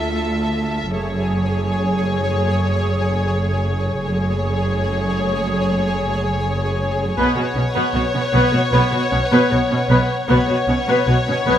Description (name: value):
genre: cinematic, suspense film score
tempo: 77 BPM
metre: 4/4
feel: straight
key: unclear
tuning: A4 = 441 Hz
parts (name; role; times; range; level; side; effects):
- warm studio violin section; melody; 0.0-11.6 s; C#5 to E5; -24 LUFS; left 4 dB; none
- rich studio viola section; accompaniment; 0.0-11.6 s; A3 to B4; -22 LUFS; equal; none
- pulsing gated texture; sustained chords; 0.0-11.6 s; G#4 to A5; -26 LUFS; left 1 dB; chorus, built-in reverb
- rich studio double bass section; bass; 0.0-11.5 s; F#1 to D2; -23 LUFS; right 1 dB; none
- warm studio cello section; bass; 0.0-11.5 s; D2 to B2; -22 LUFS; right 1 dB; none
room: moderate scoring stage reverb, RT60 1.9 s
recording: none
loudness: -16 LUFS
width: side -10 dB against mid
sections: 0.0-11.6 A section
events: none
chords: 0.0 Dmadd9; 0.9 F#madd9; 7.2 Bsus2